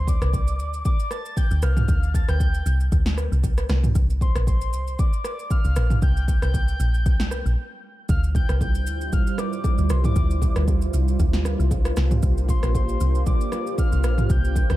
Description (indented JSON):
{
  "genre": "amapiano",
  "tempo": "116 BPM",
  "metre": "4/4",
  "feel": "swing 55% on 16ths",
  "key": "D minor",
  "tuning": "A4 = 441 Hz",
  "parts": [
    { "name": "soft octave-layered synth lead", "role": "melody", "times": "0.0-14.8 s", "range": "C6 to A6", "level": "-33 LUFS", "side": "left 2 dB", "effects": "chorus, diffuse ambient delay" },
    { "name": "deep log drum bass", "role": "bass", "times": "0.0-14.8 s", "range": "Bb1 to D2", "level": "-21 LUFS", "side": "equal", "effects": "none" },
    { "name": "deep house drum kit", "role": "drums", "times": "0.1-14.8 s", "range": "kick drum, rim click, shaker, snare drum, toms", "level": "-23 LUFS", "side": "equal", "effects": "overdrive" },
    { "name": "warm analog pad", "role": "sustained chords", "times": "8.1-14.8 s", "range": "G3 to C5", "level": "-29 LUFS", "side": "right 3 dB", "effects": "chorus" },
    { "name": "congas and bongos", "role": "percussion", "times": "8.1-14.8 s", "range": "none", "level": "-32 LUFS", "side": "right 2 dB", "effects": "none" }
  ],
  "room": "little or no reverb",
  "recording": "none",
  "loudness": "-19 LUFS",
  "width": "side -16 dB against mid",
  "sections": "0.0-14.8 A section",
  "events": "break 7.6-8.1",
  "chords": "0.0 Dm7; 3.7 C7sus4; 8.1 Dm11; 12.0 C9sus4"
}